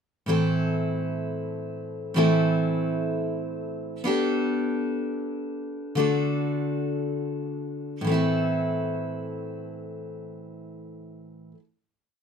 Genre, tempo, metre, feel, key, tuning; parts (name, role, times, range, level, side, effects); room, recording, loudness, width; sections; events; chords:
acoustic folk duo or small band; free time; A dorian; A4 = 436 Hz
picked steel-string acoustic guitar; solo; 0.3-11.6 s; A2 to A4; -25 LUFS; equal
moderate studio reverb, RT60 0.6 s; minimal, uncompressed stereo recording; -24 LUFS; side -7 dB against mid
0.3-8.0 interlude; 8.0-12.2 final chord
slowing down 4.0-8.0
0.3 Am; 4.0 Gadd9/B; 6.0 D; 8.0 Am